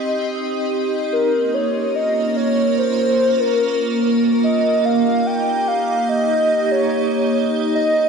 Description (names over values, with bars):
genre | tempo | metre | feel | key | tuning
IDM | free time | none | none | unclear | A4 = 441 Hz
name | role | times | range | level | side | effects
warbly nostalgic lead | melody | 0.0-8.1 s | Bb4 to G5 | -19 LUFS | left 1 dB | chorus, tape echo
icy glass pad | sustained chords | 0.0-8.1 s | Bb3 to Eb5 | -19 LUFS | right 1 dB | chorus, built-in reverb, phaser, vintage 12-bit sampler grit
room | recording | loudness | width
wet lush hall reverb, RT60 2.7 s | dreamy mix soaked in reverb | -16 LUFS | side -5 dB against mid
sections
0.0-1.1 A section; 1.1-8.1 A section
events
none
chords
0.0 Cm; 1.1 Bbm; 4.4 Eb